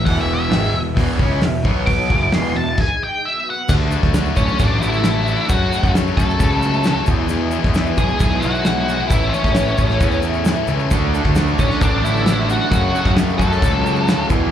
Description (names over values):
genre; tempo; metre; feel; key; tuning
classic rock; 133 BPM; 4/4; straight; unclear; A4 = 439 Hz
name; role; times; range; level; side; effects
octave-fuzz lead guitar; melody; 0.0-14.3 s; C#4 to D6; -22 LUFS; equal; distortion, slapback echo
fingerpicked twelve-string acoustic guitar; accompaniment; 0.0-14.5 s; E2 to B4; -30 LUFS; right 2 dB; slapback echo
string machine, cellos; sustained chords; 0.0-14.5 s; E3 to F#5; -29 LUFS; right 1 dB; none
crunchy overdriven guitar; riff; 0.0-2.7, 10.9-14.5 s; E2 to D4; -23 LUFS; right 11 dB; slapback echo
distorted electric guitar; riff; 0.0-14.5 s; E2 to F#4; -24 LUFS; left 12 dB; overdrive, slapback echo
fuzz picked electric bass; bass; 0.0-14.5 s; E1 to F#2; -20 LUFS; equal; overdrive
cloth-damped thuddy drum kit; drums; 0.1-14.4 s; crash cymbal, hi-hat, kick drum, snare drum; -20 LUFS; equal; none
egg shaker; percussion; 3.7-14.4 s; none; -40 LUFS; right 4 dB; none
room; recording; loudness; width
small room ambience; live gig heard through the venue's PA, club reverb; -15 LUFS; side -10 dB against mid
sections
0.0-3.7 A section; 3.7-14.5 B section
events
lead electric guitar solo 0.0-3.7; stop 2.8-3.7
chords
0.1 E5; 1.7 B5; 2.1 E5; 2.8 G#5; 3.2 B5; 3.7 D; 5.5 F#m; 7.1 E; 9.1 A; 10.9 D; 12.7 F#m